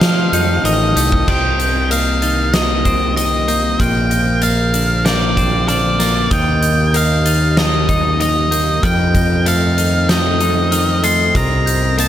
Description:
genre	post-rock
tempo	95 BPM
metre	4/4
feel	straight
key	C dorian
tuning	A4 = 440 Hz
part	octave-fuzz lead guitar	melody	0.0-12.1 s	D5 to C6	-18 LUFS	equal	distortion, analog delay
part	glass harmonica	sustained chords	0.0-12.1 s	Bb3 to A5	-25 LUFS	left 1 dB	none
part	glockenspiel with hard plastic mallets	arpeggios	0.0-12.1 s	Eb6 to Bb6	-26 LUFS	right 7 dB	analog delay
part	twelve-string electric guitar	arpeggios	0.0-12.1 s	F2 to F4	-22 LUFS	left 3 dB	analog delay
part	growling fingered electric bass	bass	0.0-12.1 s	A1 to F3	-17 LUFS	equal	overdrive
part	huge arena drum kit	drums	0.0-12.1 s	crash cymbal, hi-hat, kick drum, snare drum	-19 LUFS	equal	none
room	small room ambience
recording	none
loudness	-12 LUFS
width	side -11 dB against mid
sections	0.0-1.3 A section; 1.3-12.1 B section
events	none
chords	0.0 F7; 1.3 Cm7; 3.8 Bbadd9; 6.3 Eb; 8.8 F7; 11.3 Cm7

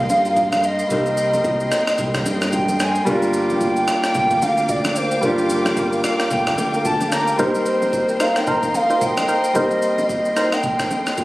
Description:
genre	amapiano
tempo	111 BPM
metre	4/4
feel	swing 58% on 16ths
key	C minor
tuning	A4 = 437 Hz
part	hollow clarinet-like synth lead	melody	0.0-11.2 s	Bb4 to Bb5	-20 LUFS	right 1 dB	chorus, digital delay
part	clear concert grand piano	accompaniment	0.0-11.2 s	G3 to Bb5	-22 LUFS	equal	none
part	warm studio string section	sustained chords	0.0-11.2 s	Bb4 to D6	-27 LUFS	left 1 dB	sidechain pumping
part	modern bright fingered electric bass	bass	0.0-7.3 s	G1 to G2	-26 LUFS	equal	none
part	jungle sampler-style drum kit	drums	0.1-11.2 s	kick drum, rim click, shaker	-26 LUFS	equal	none
part	bongos and congas	percussion	0.1-11.2 s	none	-30 LUFS	right 1 dB	none
part	percussive organ stab	stabs	7.4-10.5 s	Eb4 to C5	-22 LUFS	equal	chorus, digital delay
room	light reverb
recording	recorded on a phone in the room, studio reverb, compression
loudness	-16 LUFS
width	side -18 dB against mid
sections	0.0-11.2 A section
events	grand piano fill 2.3-3.1, 5.8-7.4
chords	0.0 Cm7; 3.1 Gm7; 7.4 Cm7

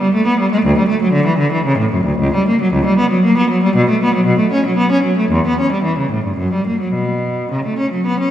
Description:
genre	classical, baroque-style suite movement for unaccompanied cello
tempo	103-119 BPM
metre	3/4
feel	rubato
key	unclear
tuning	A4 = 437 Hz
part	clear cello	solo	0.0-8.3 s	C#2 to C#4	-13 LUFS	equal	none
room	wet concert hall reverb, RT60 1.9 s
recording	none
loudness	-13 LUFS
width	side -11 dB against mid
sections	0.0-8.3 A section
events	none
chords	none

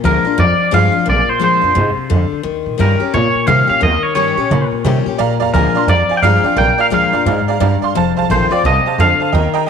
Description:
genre	rockabilly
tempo	174 BPM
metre	4/4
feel	swing 62% on 8ths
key	Bb mixolydian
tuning	A4 = 440 Hz
part	picked steel-string acoustic guitar	accompaniment	0.0-9.7 s	F2 to G4	-18 LUFS	left 11 dB	none
part	upright bass	bass	0.0-9.6 s	F1 to Db3	-16 LUFS	right 2 dB	none
part	twangy electric guitar	melody	0.1-9.3 s	Bb4 to G5	-16 LUFS	equal	lush chorus, tape echo
part	tack piano	accompaniment	5.2-9.7 s	C5 to C6	-18 LUFS	right 12 dB	none
room	light reverb, small room ambience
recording	1960s-style stereo with parts hard left and right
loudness	-12 LUFS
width	side -7 dB against mid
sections	0.0-9.7 A section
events	none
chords	0.0 Bb7; 2.4 Eb7; 5.2 Bb7; 8.0 F7

